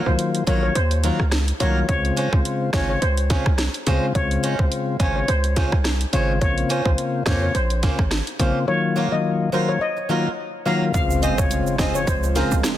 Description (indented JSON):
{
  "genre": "dancehall",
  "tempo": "106 BPM",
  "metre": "4/4",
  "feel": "swing 56% on 16ths",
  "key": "unclear",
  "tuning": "A4 = 439 Hz",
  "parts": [
    { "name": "mellow tonewheel organ", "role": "accompaniment", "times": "0.0-12.5 s", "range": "Db3 to F4", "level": "-24 LUFS", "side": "left 4 dB", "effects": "none" },
    { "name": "picked swing-style acoustic guitar", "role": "arpeggios", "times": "0.0-12.5 s", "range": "Gb3 to C5", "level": "-28 LUFS", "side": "right 5 dB", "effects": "none" },
    { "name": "steel pan", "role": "melody", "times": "0.1-12.5 s", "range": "Bb4 to F5", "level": "-26 LUFS", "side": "left 2 dB", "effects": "tape echo" },
    { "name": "hard-hitting 808-style bass", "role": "bass", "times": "0.1-12.6 s", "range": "Ab1 to F2", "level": "-22 LUFS", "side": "equal", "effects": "none" },
    { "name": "island pop drum kit", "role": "drums", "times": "0.2-12.8 s", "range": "hi-hat, kick drum, rim click, snare drum", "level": "-23 LUFS", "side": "right 1 dB", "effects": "none" },
    { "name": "warm analog pad", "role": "sustained chords", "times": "10.9-12.8 s", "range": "Db3 to F4", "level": "-30 LUFS", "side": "right 4 dB", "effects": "chorus, sidechain pumping" },
    { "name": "egg shaker", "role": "percussion", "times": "10.9-12.8 s", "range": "none", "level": "-35 LUFS", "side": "right 12 dB", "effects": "none" },
    { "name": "impact", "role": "sound effects", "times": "10.9-12.8 s", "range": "none", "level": "-31 LUFS", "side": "right 2 dB", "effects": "none" }
  ],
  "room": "light reverb, digital ambience",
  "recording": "dense, heavily limited modern master",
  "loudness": "-18 LUFS",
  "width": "side -12 dB against mid",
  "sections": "0.0-10.9 A section; 10.9-12.8 B section",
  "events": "break 0.0-1.9; impact 10.9-12.8",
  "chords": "0.0 Ebmadd9; 1.9 Dbmaj7; 6.4 Bbmadd9; 8.7 Ebmadd9; 10.9 Dbmaj7"
}